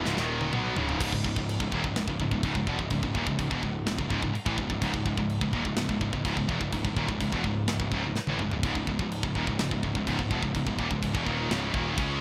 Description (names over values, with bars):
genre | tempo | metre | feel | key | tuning
heavy metal | 126 BPM | 4/4 | straight | C# minor | A4 = 441 Hz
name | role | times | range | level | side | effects
fuzz guitar | riff | 0.0-12.2 s | C#2 to C#4 | -39 LUFS | equal | none
scooped high-gain guitar | riff | 0.0-12.2 s | C#2 to C#4 | -34 LUFS | equal | distortion
tight distorted guitar | riff | 0.0-12.2 s | C#2 to C#4 | -36 LUFS | equal | distortion
fuzz picked electric bass | bass | 0.0-12.2 s | C#1 to C#2 | -36 LUFS | equal | overdrive
tight metal drum kit | drums | 0.1-12.1 s | crash cymbal, kick drum, snare drum, toms | -35 LUFS | equal | none
room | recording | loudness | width
light reverb, small room ambience | bright 1980s-style digital production | -29 LUFS | mono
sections
0.0-1.0 A section; 1.0-12.2 B section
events
drum fill 0.1-1.0, 8.2-8.6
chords
0.0 C#5; 1.0 C#m